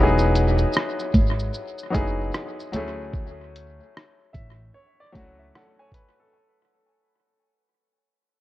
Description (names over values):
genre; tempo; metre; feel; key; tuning
lo-fi hip hop; 75 BPM; 4/4; swing 63% on 16ths; unclear; A4 = 440 Hz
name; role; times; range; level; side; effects
bright upright piano; accompaniment; 0.0-6.6 s; F#3 to B5; -25 LUFS; left 2 dB; low-pass filter, analog delay
upright bass; bass; 0.0-5.5 s; E1 to D2; -22 LUFS; equal; none
lo-fi sampler-style drum kit; drums; 0.2-6.2 s; hi-hat, kick drum, rim click, shaker; -25 LUFS; equal; vintage 12-bit sampler grit, analog delay
room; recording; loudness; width
light reverb, small room ambience; echo-heavy mix, cassette tape; -21 LUFS; side -16 dB against mid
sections
0.0-6.3 A section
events
fade-out 0.0-6.3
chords
0.0 Emaj9; 2.7 Dmaj9#11